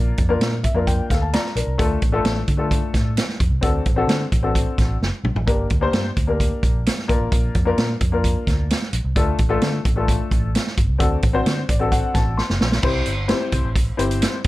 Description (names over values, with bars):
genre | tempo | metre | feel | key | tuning
uptempo 1960s-style soul | 130 BPM | 4/4 | straight | D minor | A4 = 440 Hz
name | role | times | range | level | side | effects
warm upright piano | accompaniment | 0.0-14.4 s | A3 to C6 | -23 LUFS | left 3 dB | none
vintage muted fingered electric bass | bass | 0.0-14.5 s | F#1 to D3 | -23 LUFS | equal | none
vintage drum kit | drums | 0.2-14.5 s | crash cymbal, hi-hat, kick drum, snare drum, toms | -20 LUFS | equal | none
room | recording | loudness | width
small room ambience | none | -18 LUFS | side -17 dB against mid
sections
0.0-12.8 A section; 12.8-14.5 B section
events
upright piano fill 0.4-1.8, 11.5-12.8; drum fill 5.0-5.5, 12.4-12.8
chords
0.0 Bb; 1.8 Dm; 3.6 D7; 5.5 Gm; 7.1 Bb; 9.2 Dm; 11.0 D7; 12.8 C